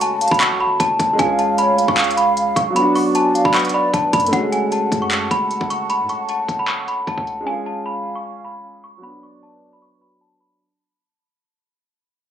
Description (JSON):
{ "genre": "hip hop, trap", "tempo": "153 BPM", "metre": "4/4", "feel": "half-time", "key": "F# harmonic minor", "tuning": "A4 = 440 Hz", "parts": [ { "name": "small celesta", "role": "melody", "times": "0.0-10.6 s", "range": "F#5 to C#6", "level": "-20 LUFS", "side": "equal", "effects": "tape echo" }, { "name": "hollow clarinet-like synth lead", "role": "second line", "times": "0.0-3.9 s", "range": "C#5 to A5", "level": "-23 LUFS", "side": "right 2 dB", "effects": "chorus, tape echo" }, { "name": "dark grand piano", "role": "accompaniment", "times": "0.0-10.6 s", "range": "F#3 to G#4", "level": "-23 LUFS", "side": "equal", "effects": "none" }, { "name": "breathy mellow large flute ensemble", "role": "sustained chords", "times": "0.0-10.6 s", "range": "C#4 to A5", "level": "-25 LUFS", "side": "right 1 dB", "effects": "none" }, { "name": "warm 808-style bass", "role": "bass", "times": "0.0-7.5 s", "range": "F#1 to A2", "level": "-32 LUFS", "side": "equal", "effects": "none" }, { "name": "trap drum kit", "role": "drums", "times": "0.0-7.4 s", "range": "handclaps, hi-hat, kick drum", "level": "-22 LUFS", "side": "equal", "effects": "none" } ], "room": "moderate plate reverb, RT60 1.1 s, studio ambience", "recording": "recorded on a phone in the room, club reverb, compression, low-pass filter", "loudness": "-16 LUFS", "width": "side -9 dB against mid", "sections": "0.0-4.3 A section; 4.3-10.6 B section", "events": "fade-out 4.3-10.6; filter sweep 4.3-10.6", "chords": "0.0 F#madd9; 1.2 C#; 2.8 Bm; 4.3 F#madd9; 7.5 C#; 9.0 Bm" }